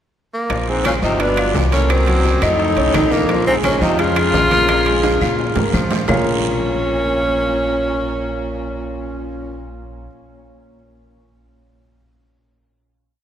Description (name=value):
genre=Afro-Cuban jazz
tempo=172 BPM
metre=4/4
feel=straight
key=Bb minor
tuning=A4 = 440 Hz
part: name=clear tenor saxophone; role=melody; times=0.3-9.6 s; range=Bb3 to F4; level=-19 LUFS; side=equal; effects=none
part: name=clear concert grand piano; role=accompaniment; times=0.5-10.1 s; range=Eb3 to F5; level=-23 LUFS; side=right 2 dB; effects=none
part: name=upright bass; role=bass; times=0.5-10.1 s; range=G1 to Bb2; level=-22 LUFS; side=equal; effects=none
part: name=bongos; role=percussion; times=0.5-6.2 s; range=none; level=-29 LUFS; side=left 5 dB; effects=none
part: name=congas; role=percussion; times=0.5-6.2 s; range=none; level=-29 LUFS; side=equal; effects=none
part: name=guiro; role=percussion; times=0.5-6.2 s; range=none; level=-31 LUFS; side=right 6 dB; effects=none
part: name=timbales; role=percussion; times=0.5-6.2 s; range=none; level=-26 LUFS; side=right 4 dB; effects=none
part: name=breathy baritone saxophone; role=second line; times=0.7-9.6 s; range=F2 to Db3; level=-23 LUFS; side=left 3 dB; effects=none
part: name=claves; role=percussion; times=0.9-6.2 s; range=none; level=-33 LUFS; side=left 6 dB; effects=none
room=wet cathedral reverb, RT60 4.4 s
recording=recorded in a church or concert hall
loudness=-15 LUFS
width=side -10 dB against mid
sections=0.0-0.5 pickup bar; 0.5-6.1 A section; 6.1-8.9 final chord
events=drum fill 5.0-6.1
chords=0.0 N.C.; 0.5 Bb5; 1.2 G7; 1.9 Cm7b5; 2.6 Faug7; 3.3 Bbm7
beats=0.15 | 0.50 0.85 1.20 1.55 | 1.90 2.25 2.60 2.94 | 3.29 3.64 3.99 4.34 | 4.69 5.04 5.39 5.74 | 6.09 6.44 6.79 7.14 | 7.49 7.84 8.19 8.54